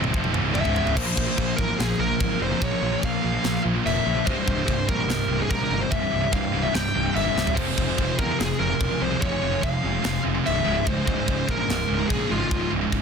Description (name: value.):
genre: heavy metal.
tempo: 145 BPM.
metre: 4/4.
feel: straight.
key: unclear.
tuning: A4 = 440 Hz.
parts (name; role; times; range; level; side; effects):
clear symphonic string section; sustained chords; 0.0-13.0 s; C3 to C5; -37 LUFS; left 1 dB; none.
heavy high-gain guitar; riff; 0.0-13.0 s; C2 to Bb3; -30 LUFS; left 12 dB; distortion.
scooped high-gain guitar; riff; 0.0-13.0 s; C2 to Bb3; -29 LUFS; right 11 dB; distortion.
thick fuzz guitar; riff; 0.0-13.0 s; C2 to Bb3; -30 LUFS; equal; distortion.
fuzz picked electric bass; bass; 0.0-13.0 s; C1 to E2; -29 LUFS; equal; overdrive.
tight metal drum kit; drums; 0.0-13.0 s; china cymbal, crash cymbal, kick drum, snare drum, toms; -28 LUFS; equal; none.
high-gain lead guitar; melody; 0.6-12.7 s; F4 to G5; -27 LUFS; left 2 dB; distortion, tape echo.
room: light reverb, studio ambience.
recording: dense, heavily limited modern master.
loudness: -21 LUFS.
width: side -6 dB against mid.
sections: 1.0-13.0 A section.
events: drum fill 0.0-1.0, 7.4; half time 1.0-13.0.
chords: 0.0 C; 1.0 Bbm; 4.3 C; 7.6 Fm; 10.7 Db.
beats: 0.13 0.54 | 0.95 1.37 1.78 2.19 | 2.61 3.02 3.43 3.85 | 4.26 4.67 5.09 5.50 | 5.91 6.33 6.74 7.15 | 7.56 7.98 8.39 8.80 | 9.21 9.63 10.04 10.45 | 10.86 11.28 11.69 12.10 | 12.51 12.93.